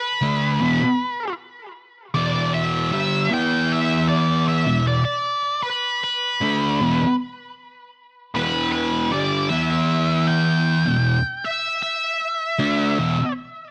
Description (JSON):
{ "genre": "metal", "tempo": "78 BPM", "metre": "4/4", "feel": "straight", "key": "E minor", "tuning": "A4 = 435 Hz", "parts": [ { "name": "octave-fuzz lead guitar", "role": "melody", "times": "0.0-13.3 s", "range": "B4 to G5", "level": "-25 LUFS", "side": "equal", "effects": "wah, distortion, tape echo" }, { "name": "thick fuzz guitar", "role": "riff", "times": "0.2-13.2 s", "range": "E2 to E4", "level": "-22 LUFS", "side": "equal", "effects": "distortion" } ], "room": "light reverb", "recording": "none", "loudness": "-21 LUFS", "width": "mono", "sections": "0.0-13.7 A section", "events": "none", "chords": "0.0 E5", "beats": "0.61 1.38 | 2.16 2.93 3.71 4.48 | 5.26 6.03 6.80 7.57 | 8.35 9.12 9.89 10.66 | 11.43 12.21 12.98" }